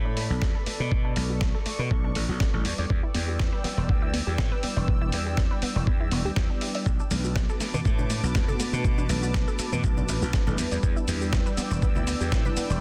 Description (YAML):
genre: nu-disco, nu disco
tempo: 121 BPM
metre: 4/4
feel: swing 54% on 16ths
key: B minor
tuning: A4 = 440 Hz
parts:
  - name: mellow synth brass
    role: accompaniment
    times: 0.0-12.8 s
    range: G3 to B4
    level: -37 LUFS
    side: equal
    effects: chorus, sidechain pumping
  - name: lush unison pad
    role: sustained chords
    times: 0.0-12.8 s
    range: A4 to E6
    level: -39 LUFS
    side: equal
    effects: chorus, sidechain pumping
  - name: gritty slap bass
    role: bass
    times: 0.0-12.8 s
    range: E1 to B2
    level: -31 LUFS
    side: equal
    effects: overdrive
  - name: unison pluck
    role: arpeggios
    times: 0.1-12.8 s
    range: A3 to E5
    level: -38 LUFS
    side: equal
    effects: cassette tape, sidechain pumping, delay
  - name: dusty soul sampler-style drum kit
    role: drums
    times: 0.2-12.8 s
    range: cabasa, hi-hat, snare drum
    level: -35 LUFS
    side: equal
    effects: none
  - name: electronic kick drum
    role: drums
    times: 0.4-12.4 s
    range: none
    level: -28 LUFS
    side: equal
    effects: none
  - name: congas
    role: percussion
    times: 7.1-12.8 s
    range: none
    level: -38 LUFS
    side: equal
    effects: none
room: digital ambience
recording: dense, heavily limited modern master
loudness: -26 LUFS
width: mono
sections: 0.0-12.8 A section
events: filter sweep on analog polysynth 0.0-12.8; filter sweep on synth arpeggio sound 0.0-12.8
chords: 0.0 Bm7; 2.6 Em7; 6.9 Bm7; 10.6 Em7